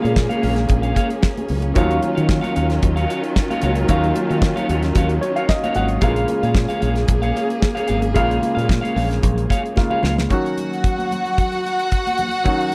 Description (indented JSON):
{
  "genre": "disco",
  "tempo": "113 BPM",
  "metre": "4/4",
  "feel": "straight",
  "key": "Eb minor",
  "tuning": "A4 = 440 Hz",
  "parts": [
    { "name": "clean electric guitar", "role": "accompaniment", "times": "0.0-10.2 s", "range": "Gb4 to F5", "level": "-29 LUFS", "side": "equal", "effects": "spring reverb" },
    { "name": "clear grand piano", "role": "accompaniment", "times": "0.0-12.7 s", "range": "Cb3 to Gb5", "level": "-26 LUFS", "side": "equal", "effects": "none" },
    { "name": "rich studio string section", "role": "sustained chords", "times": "0.0-10.3 s", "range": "Eb3 to Ab4", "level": "-27 LUFS", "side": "equal", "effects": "none" },
    { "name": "fingered electric bass", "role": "bass", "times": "0.0-10.3 s", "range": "Ab1 to Eb3", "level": "-23 LUFS", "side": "equal", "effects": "none" },
    { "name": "congas", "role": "percussion", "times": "0.0-12.3 s", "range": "none", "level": "-32 LUFS", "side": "equal", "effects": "none" },
    { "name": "damped 70s drum kit", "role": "drums", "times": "0.1-12.7 s", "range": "hi-hat, kick drum, snare drum", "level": "-22 LUFS", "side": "equal", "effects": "none" },
    { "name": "warm studio violin section", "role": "second line", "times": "10.3-12.7 s", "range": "Gb4 to Gb5", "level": "-23 LUFS", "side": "equal", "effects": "none" }
  ],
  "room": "little or no reverb",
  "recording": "dry, close 1970s-style studio recording",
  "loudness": "-19 LUFS",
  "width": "mono",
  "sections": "0.0-10.3 A section; 10.3-12.7 B section",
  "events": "grand piano fill 5.0-6.0; drum fill 9.8-10.3",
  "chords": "0.0 Bbm7; 1.8 Ebm9; 6.0 Bbm7; 10.3 Ebm7"
}